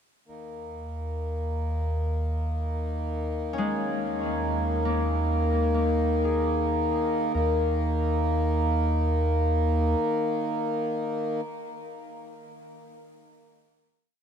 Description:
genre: ambient.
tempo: 68 BPM.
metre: 4/4.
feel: straight.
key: unclear.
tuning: A4 = 439 Hz.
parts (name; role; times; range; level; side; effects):
round analog bass; bass; 0.3-10.0 s; Eb2; -27 LUFS; equal; none.
hand-pumped harmonium; drone; 0.3-11.4 s; Eb3 to Bb3; -28 LUFS; equal; stereo widening.
concert harp; arpeggios; 3.5-11.4 s; Ab3 to Bb4; -34 LUFS; left 3 dB; diffuse ambient delay.
room: moderate huge ambient reverb, RT60 7.0 s.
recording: none.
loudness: -24 LUFS.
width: side -8 dB against mid.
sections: 0.3-7.3 A section; 7.3-10.9 final chord.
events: fade-in on harmonium 0.3-7.3; fade-out on harp 0.3-7.3.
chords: 0.3 Eb5.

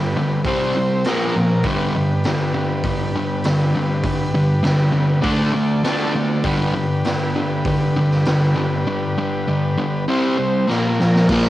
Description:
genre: garage rock duo or trio.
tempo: 100 BPM.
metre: 4/4.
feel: straight.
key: G mixolydian.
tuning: A4 = 439 Hz.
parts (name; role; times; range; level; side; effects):
combo organ; sustained chords; 0.0-11.5 s; Bb3 to A5; -25 LUFS; equal; cassette tape.
fuzz guitar; riff; 0.0-11.5 s; G2 to D4; -18 LUFS; equal; distortion, cassette tape.
raw garage drum kit; drums; 0.4-11.4 s; crash cymbal, hi-hat, kick drum, snare drum; -25 LUFS; equal; cassette tape.
room: moderate studio reverb, RT60 0.7 s.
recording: home recording on cassette.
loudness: -16 LUFS.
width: side -14 dB against mid.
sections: 0.0-11.3 A section.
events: transistor combo organ fill 5.5-6.5; drum fill 10.7-11.3.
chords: 0.5 C5; 1.0 Bb5; 1.6 G; 5.2 D5; 6.5 G; 10.1 C5; 10.7 Bb5.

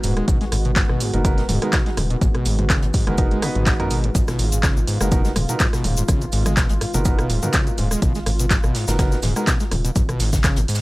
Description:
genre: acid house.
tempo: 124 BPM.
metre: 4/4.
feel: swing 54% on 16ths.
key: unclear.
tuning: A4 = 440 Hz.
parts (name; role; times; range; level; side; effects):
warm analog pad; sustained chords; 0.0-10.8 s; Eb3 to Gb4; -30 LUFS; equal; chorus, sidechain pumping.
overdriven acid bass; riff; 0.0-10.8 s; Gb2 to Ab3; -25 LUFS; equal; distortion, analog chorus, sidechain pumping.
round analog bass; bass; 0.0-10.7 s; Eb1 to Ab1; -23 LUFS; equal; sidechain pumping.
open jazz drum kit; drums; 0.0-10.8 s; hi-hat, shaker, snare drum; -33 LUFS; right 2 dB; sidechain pumping on hats, high-pass filter on hats, studio reverb, high-pass filter on snare, sidechain pumping on perc, high-pass filter on perc, high-pass filter on room.
punchy analog drum machine; drums; 0.0-10.8 s; handclaps, hi-hat, rim click, toms; -25 LUFS; equal; studio reverb.
electronic kick drum; drums; 0.3-10.5 s; none; -20 LUFS; equal; studio reverb.
warm grand piano; stabs; 1.1-9.5 s; Cb4 to Cb5; -28 LUFS; right 2 dB; analog delay.
tube shaker; percussion; 4.2-10.7 s; none; -32 LUFS; left 4 dB; none.
room: small room ambience.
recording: dry, gritty hardware recording.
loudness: -17 LUFS.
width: side -20 dB against mid.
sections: 0.0-10.8 A section.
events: none.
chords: 0.0 Abm7.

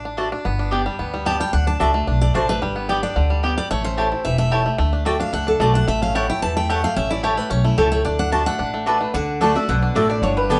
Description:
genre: bluegrass.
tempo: 221 BPM.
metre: 4/4.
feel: straight.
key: D major.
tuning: A4 = 440 Hz.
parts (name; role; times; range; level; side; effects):
bluegrass banjo; melody; 0.0-10.6 s; D3 to G4; -27 LUFS; equal; none.
upright bass; bass; 0.0-10.6 s; E1 to E2; -25 LUFS; equal; none.
mandolin; stabs; 0.2-10.6 s; A3 to A5; -25 LUFS; equal; none.
picked steel-string acoustic guitar; accompaniment; 1.3-10.6 s; G2 to A5; -25 LUFS; equal; none.
mandolin; melody; 8.9-10.6 s; B4 to F#5; -26 LUFS; equal; none.
room: moderate studio reverb, RT60 0.7 s.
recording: band playing live in one room, nothing above 10.6 kHz.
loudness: -20 LUFS.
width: mono.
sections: 0.5-9.1 A section; 9.1-10.6 B section.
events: steel-string acoustic guitar solo 0.0-9.1.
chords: 0.5 G; 1.5 D; 2.6 G; 3.7 A; 4.8 D; 5.9 A; 8.1 D.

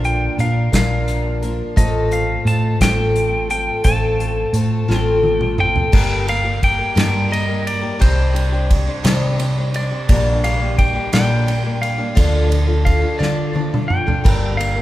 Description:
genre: folk rock and heartland rock.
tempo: 58 BPM (dotted quarters).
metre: 6/8.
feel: straight.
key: G minor.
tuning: A4 = 441 Hz.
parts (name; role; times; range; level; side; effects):
clean lap steel guitar; melody; 0.0-14.8 s; C5 to A5; -23 LUFS; equal; none.
picked twelve-string acoustic guitar; accompaniment; 0.0-14.8 s; G2 to Bb4; -22 LUFS; left 1 dB; none.
hollow-body short-scale fingered electric bass; bass; 0.0-14.8 s; G1 to D3; -19 LUFS; equal; none.
unplugged drum kit; drums; 0.0-14.8 s; crash cymbal, hi-hat, kick drum, ride cymbal, snare drum, toms; -19 LUFS; equal; none.
room: moderate church reverb, RT60 3.4 s.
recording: recorded in a church or concert hall.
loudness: -15 LUFS.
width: side -15 dB against mid.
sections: 0.0-5.9 A section; 5.9-14.8 B section.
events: drum fill 4.9-5.9, 13.2-14.2.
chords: 0.0 Bb; 1.8 F/A; 5.9 Gm; 8.0 Cmadd9; 10.1 Gm/Bb; 12.2 Dm; 14.2 Gm.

